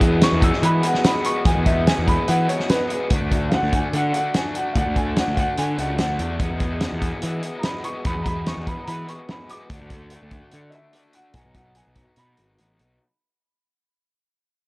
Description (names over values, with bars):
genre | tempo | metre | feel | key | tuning
indie rock | 146 BPM | 4/4 | straight | E mixolydian | A4 = 440 Hz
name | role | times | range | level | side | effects
raw garage guitar | riff | 0.0-13.0 s | E2 to G#4 | -27 LUFS | left 2 dB | overdrive, harmonic tremolo
fuzz picked electric bass | bass | 0.0-13.0 s | G#1 to E3 | -23 LUFS | equal | overdrive
loose indie drum kit | drums | 0.0-12.9 s | hi-hat, kick drum, snare drum | -22 LUFS | equal | none
warm upright piano | melody | 0.2-12.4 s | B4 to E6 | -25 LUFS | equal | none
room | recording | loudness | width
small room ambience | worn, warbling old tape, cassette tape, warbly pitch drift | -19 LUFS | side -24 dB against mid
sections
0.0-13.0 A section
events
upright piano solo 0.0-13.0; fade-out 1.1-13.0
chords
0.0 E; 3.1 D; 6.4 E; 9.7 D; 11.3 B